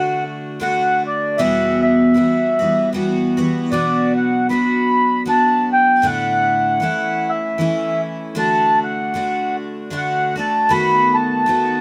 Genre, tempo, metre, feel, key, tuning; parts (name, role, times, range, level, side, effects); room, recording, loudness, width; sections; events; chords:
acoustic folk duo or small band; 77 BPM; 3/4; swing 57% on 8ths; D major; A4 = 438 Hz
mellow accordion; melody; 0.0-11.8 s; D5 to B5; -19 LUFS; equal
picked twelve-string acoustic guitar; accompaniment; 0.0-11.8 s; E2 to F#4; -22 LUFS; equal
little or no reverb; close, detailed microphones; -18 LUFS; mono
0.0-11.8 A section
0.0 D; 1.4 Emadd9; 3.7 Bm; 6.0 Asus4; 6.8 A; 8.4 D; 10.7 B7/D#